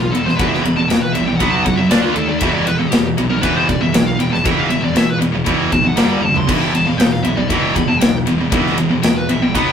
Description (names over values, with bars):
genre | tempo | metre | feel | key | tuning
heavy metal | 118 BPM | 4/4 | straight | E minor | A4 = 439 Hz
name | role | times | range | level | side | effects
high-gain lead guitar | melody | 0.0-9.7 s | F4 to C6 | -21 LUFS | left 2 dB | distortion
high-gain distorted guitar | riff | 0.0-9.7 s | E2 to D4 | -21 LUFS | left 6 dB | distortion
high-gain distorted guitar | riff | 0.0-9.7 s | E2 to D4 | -17 LUFS | right 3 dB | distortion
fuzz fingered electric bass | bass | 0.0-9.7 s | E1 to D#2 | -25 LUFS | equal | overdrive
big rock drum kit | drums | 0.1-9.7 s | crash cymbal, kick drum, ride cymbal, snare drum, toms | -18 LUFS | left 1 dB | none
room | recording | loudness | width
wet small room reverb, RT60 0.5 s | rough rehearsal-room recording | -13 LUFS | side -8 dB against mid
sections
0.0-9.7 A section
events
lead electric guitar solo 0.0-9.7; drum fill 6.2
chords
0.0 E5; 1.4 B5; 1.9 D5; 2.4 E5; 6.0 G5; 6.5 E5